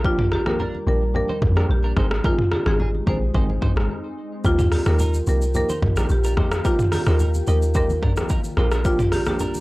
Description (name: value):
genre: afrobeats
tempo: 109 BPM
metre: 4/4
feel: straight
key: unclear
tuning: A4 = 438 Hz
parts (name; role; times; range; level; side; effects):
- tine electric piano; accompaniment; 0.0-9.4 s; Eb3 to Ab4; -29 LUFS; equal; medium stereo tremolo
- glassy FM pad; sustained chords; 0.0-9.6 s; Eb3 to G4; -33 LUFS; left 2 dB; ensemble chorus, built-in reverb
- deep log drum bass; bass; 0.0-9.5 s; Ab1 to F2; -21 LUFS; equal; none
- deep house drum kit; drums; 0.0-9.6 s; hi-hat, kick drum, rim click, shaker, toms; -23 LUFS; equal; overdrive
- marimba with medium mallets; melody; 0.1-9.4 s; F4 to C5; -25 LUFS; right 1 dB; none
- direct-recorded clean electric guitar; riff; 0.2-9.6 s; Bb3 to Eb5; -34 LUFS; right 3 dB; lush chorus, tape echo
- congas; percussion; 0.3-9.6 s; none; -31 LUFS; equal; none
room: light reverb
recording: dry, gritty hardware recording, transformer saturation, cassette tape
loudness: -18 LUFS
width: side -20 dB against mid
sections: 0.0-9.6 A section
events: break 0.0-4.4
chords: 0.0 Bb6; 2.0 Ab; 4.4 Bb6